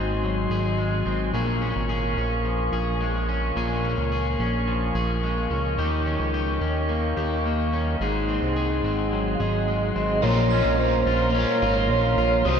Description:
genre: dream pop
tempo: 108 BPM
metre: 4/4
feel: straight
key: Bb minor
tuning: A4 = 440 Hz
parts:
  - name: mellow tonewheel organ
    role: sustained chords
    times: 0.0-12.6 s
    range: Gb4 to Eb6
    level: -28 LUFS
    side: right 1 dB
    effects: slow rotary speaker
  - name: electric guitar at the edge of break-up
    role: arpeggios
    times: 0.0-12.6 s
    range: Ab2 to Ab4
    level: -26 LUFS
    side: left 4 dB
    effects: lush chorus, ping-pong delay
  - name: fat analog bass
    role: bass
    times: 0.0-12.6 s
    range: Ab1 to Eb2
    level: -26 LUFS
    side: right 1 dB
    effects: none
  - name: hollow clarinet-like synth lead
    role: melody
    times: 9.3-12.6 s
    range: C5 to F5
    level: -25 LUFS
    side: right 2 dB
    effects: chorus, ping-pong delay
  - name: overdriven electric guitar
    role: accompaniment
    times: 10.2-12.6 s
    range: Bb2 to C5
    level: -29 LUFS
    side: right 5 dB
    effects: harmonic tremolo, analog chorus
  - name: vibraphone with hard mallets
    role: texture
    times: 10.5-12.5 s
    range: Eb5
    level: -38 LUFS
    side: right 2 dB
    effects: none
room: wet cathedral reverb, RT60 5.1 s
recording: dreamy mix soaked in reverb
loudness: -21 LUFS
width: side -7 dB against mid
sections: 0.0-10.2 A section; 10.2-12.6 B section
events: none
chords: 0.0 Ab7; 1.3 Bbm7; 5.8 Eb7; 8.0 Ab7; 10.2 Bbmadd9

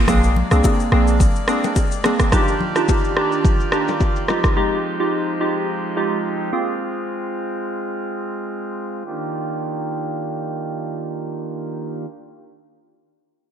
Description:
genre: afrobeats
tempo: 107 BPM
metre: 4/4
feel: swing 55% on 16ths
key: Eb major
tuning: A4 = 440 Hz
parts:
  - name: pipe organ, foundations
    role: sustained chords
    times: 0.0-12.1 s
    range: Eb3 to D5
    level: -25 LUFS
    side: right 1 dB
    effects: none
  - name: warm 808-style bass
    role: bass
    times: 0.0-1.3 s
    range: Bb1 to C2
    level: -16 LUFS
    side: equal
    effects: none
  - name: glassy digital keys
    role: accompaniment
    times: 0.1-6.7 s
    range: Ab3 to Ab4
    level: -21 LUFS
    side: right 2 dB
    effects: chorus
  - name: afro-pop drum kit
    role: drums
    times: 0.1-4.6 s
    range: kick drum, rim click, shaker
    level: -19 LUFS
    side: equal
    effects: vintage 12-bit sampler grit, gated reverb
  - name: congas and bongos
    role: percussion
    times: 0.1-4.4 s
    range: none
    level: -28 LUFS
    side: left 6 dB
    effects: none
room: moderate lush hall reverb, RT60 1.9 s, digital ambience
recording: bright 1980s-style digital production, low-pass filter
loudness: -18 LUFS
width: side -9 dB against mid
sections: 0.1-9.1 A section; 9.1-11.3 B section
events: filter sweep 0.1-9.1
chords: 0.1 Bb9; 2.3 Ebmaj9; 4.3 Fm9; 6.5 Ab6; 9.1 Ebmaj9

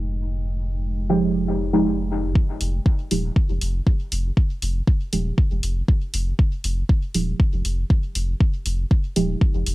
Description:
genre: dub techno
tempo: 119 BPM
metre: 4/4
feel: swing 53% on 16ths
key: F minor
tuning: A4 = 444 Hz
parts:
  - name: deep dark ambient pad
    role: sustained chords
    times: 0.0-2.3 s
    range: Ab3 to G5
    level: -38 LUFS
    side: equal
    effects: chorus, built-in reverb, sidechain pumping, cassette tape
  - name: deep mellow chord stab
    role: stabs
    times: 0.0-9.7 s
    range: F3 to G4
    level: -22 LUFS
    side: right 2 dB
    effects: chorus, phaser, sidechain pumping, cassette tape, dub echo
  - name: warm sub bass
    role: bass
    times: 0.0-9.7 s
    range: Eb1 to F1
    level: -24 LUFS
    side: equal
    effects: transformer saturation, sidechain pumping
  - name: electronic kick drum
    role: drums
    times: 2.4-9.5 s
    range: none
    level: -18 LUFS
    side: equal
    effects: cassette tape
  - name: electronic hi-hat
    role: drums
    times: 2.6-9.7 s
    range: none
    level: -30 LUFS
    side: left 1 dB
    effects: cassette tape
room: little or no reverb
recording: home recording on cassette, low-pass filter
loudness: -19 LUFS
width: side -18 dB against mid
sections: 0.0-2.4 A section; 2.4-9.7 B section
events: filter sweep 0.0-2.4; filter sweep on synth stab 2.4-9.7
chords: 0.0 Fm9

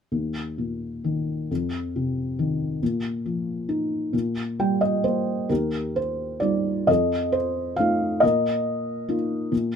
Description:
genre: classical, lyrical solo piano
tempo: 44 BPM (dotted quarters)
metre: 6/8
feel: uneven beats, rubato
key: Eb major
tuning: A4 = 440 Hz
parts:
  - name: felt-muted upright piano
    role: solo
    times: 0.1-9.8 s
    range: Eb2 to G5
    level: -22 LUFS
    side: left 1 dB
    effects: none
room: light reverb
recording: close, detailed microphones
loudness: -22 LUFS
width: side -7 dB against mid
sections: 0.1-5.5 A section; 5.5-9.8 B section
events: felt piano fill 4.1-5.5, 9.5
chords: 0.1 Eb5; 1.5 F5; 2.8 Bbsus4; 4.1 Eb6/Bb; 5.5 Ebadd9; 6.9 F7; 8.2 Bbsus4

